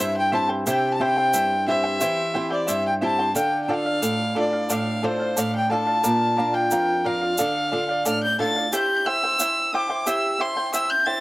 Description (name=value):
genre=andean folk, Andean ensemble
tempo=89 BPM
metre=2/4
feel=straight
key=unclear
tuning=A4 = 443 Hz
part: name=dark violin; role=melody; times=0.0-11.2 s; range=C5 to A6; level=-22 LUFS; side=left 1 dB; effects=none
part: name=charango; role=accompaniment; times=0.0-11.2 s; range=E4 to G5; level=-26 LUFS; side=right 1 dB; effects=none
part: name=flamenco guitar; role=accompaniment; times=0.0-8.7 s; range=F2 to Bb4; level=-26 LUFS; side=right 1 dB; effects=none
part: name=egg shaker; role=percussion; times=0.7-10.9 s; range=none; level=-28 LUFS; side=right 1 dB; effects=none
room=moderate spring reverb, RT60 1.1 s, small room ambience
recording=dry, gritty hardware recording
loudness=-20 LUFS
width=side -19 dB against mid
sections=0.0-8.7 A section; 8.7-11.2 A section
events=none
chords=0.0 C; 3.4 Dm; 6.0 Bb; 7.4 Dm; 8.7 C